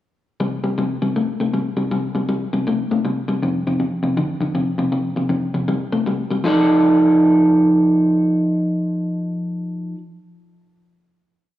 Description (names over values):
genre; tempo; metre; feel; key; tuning
blues; 159 BPM; 4/4; swing 63% on 8ths; F major; A4 = 441 Hz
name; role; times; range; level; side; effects
electric guitar through a small old amp; solo; 0.4-10.0 s; F2 to D5; -17 LUFS; equal; slapback echo
room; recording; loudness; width
moderate lush hall reverb, RT60 2.2 s; live gig heard through the venue's PA, club reverb; -16 LUFS; side -14 dB against mid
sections
0.4-6.4 head; 6.4-9.5 final chord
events
none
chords
0.4 C5; 3.4 F5; 5.7 C5; 6.4 F6